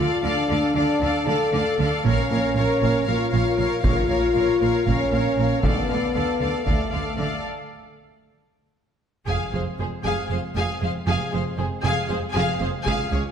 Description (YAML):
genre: cinematic, epic orchestral film score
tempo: 233 BPM (eighths)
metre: 7/8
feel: straight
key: F minor from 9.3 s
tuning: A4 = 440 Hz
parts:
  - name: warm symphonic violin section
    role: melody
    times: 0.0-13.2 s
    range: C5 to Ab5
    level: -31 LUFS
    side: left 4 dB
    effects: none
  - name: warm symphonic violin section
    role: second line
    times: 0.0-13.2 s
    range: Ab4 to F5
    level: -30 LUFS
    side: left 3 dB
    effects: none
  - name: warm symphonic viola section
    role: accompaniment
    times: 0.0-13.2 s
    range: Ab4 to Bb4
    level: -30 LUFS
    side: right 1 dB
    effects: none
  - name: mellow French horn section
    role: sustained chords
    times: 0.0-13.3 s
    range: Ab3 to A4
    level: -25 LUFS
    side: left 2 dB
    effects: none
  - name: rich symphonic double bass section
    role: bass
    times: 0.0-13.2 s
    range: F1 to D2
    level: -28 LUFS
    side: right 3 dB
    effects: none
  - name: warm symphonic cello section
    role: bass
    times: 0.0-13.2 s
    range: Db2 to D3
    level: -27 LUFS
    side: right 3 dB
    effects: none
  - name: taiko ensemble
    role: drums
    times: 2.0-13.3 s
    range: none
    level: -27 LUFS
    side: equal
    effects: none
room: moderate scoring stage reverb, RT60 1.6 s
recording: none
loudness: -20 LUFS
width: side -8 dB against mid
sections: 0.0-9.3 A section; 9.3-13.3 B section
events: break 7.4-9.3; drum fill 8.5-9.3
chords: 0.0 Dm; 2.0 Bbm; 5.6 Dm; 7.4 N.C.; 9.3 Fm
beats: | 0.23 0.49 0.75 1.01 1.27 1.53 1.78 | 2.04 2.30 2.55 2.81 3.06 3.32 3.57 | 3.83 4.08 4.34 4.60 4.85 5.11 5.37 | 5.62 5.88 6.14 6.40 6.66 6.92 7.18 | 7.44 7.70 7.96 8.23 8.49 8.75 9.01 | 9.28 9.54 9.79 10.05 10.31 10.56 10.82 | 11.08 11.34 11.59 11.85 12.10 12.36 12.61 | 12.87 13.12